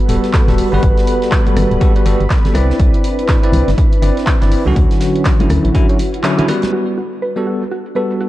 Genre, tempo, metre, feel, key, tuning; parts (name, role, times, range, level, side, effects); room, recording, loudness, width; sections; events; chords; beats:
deep house; 122 BPM; 4/4; swing 60% on 16ths; G major; A4 = 440 Hz
warm analog pad; sustained chords; 0.0-8.3 s; G3 to B4; -24 LUFS; equal; chorus, sidechain pumping
soft string machine; texture; 0.0-6.7 s; B4 to B5; -27 LUFS; left 1 dB; ensemble chorus, sidechain pumping
barky tine electric piano; stabs; 0.1-8.3 s; D3 to D5; -18 LUFS; equal; medium stereo tremolo, sidechain pumping, tape echo
organ-like FM bass; bass; 0.1-5.7 s; D1 to D2; -15 LUFS; equal; sidechain pumping
modern studio drum kit; drums; 0.1-8.3 s; hi-hat, snare drum; -36 LUFS; right 2 dB; high-pass filter on hats, low-pass filter on hats, high-pass filter on snare, low-pass filter on snare, high-pass filter on room, low-pass filter on room
punchy analog drum machine; drums; 0.1-8.3 s; handclaps, hi-hat, rim click, shaker; -24 LUFS; equal; low-pass filter on hats, low-pass filter on snare, low-pass filter on perc, low-pass filter on room
electronic kick drum; drums; 0.3-5.9 s; -14 LUFS; equal
congas; percussion; 0.5-6.7 s; -22 LUFS; left 2 dB
mallet-like synth pluck; arpeggios; 6.7-8.3 s; F#4 to B4; -22 LUFS; right 1 dB; chorus, sidechain pumping, tape echo
light reverb; dark, warm production; -12 LUFS; side -15 dB against mid
0.0-6.7 A section; 6.7-8.3 B section
filter sweep on tine electric piano 0.0-6.7; band accent 6.2; filter sweep on drum 6.7-8.3; filter sweep on synth arpeggio sound 6.7-8.3
0.0 Gmaj9; 2.5 Cmaj9; 4.8 Dmaj9; 6.7 Gmaj9
0.34 | 0.83 1.32 1.81 2.30 | 2.80 3.29 3.78 4.27 | 4.76 5.25 5.75 6.24 | 6.73 7.22 7.71 8.21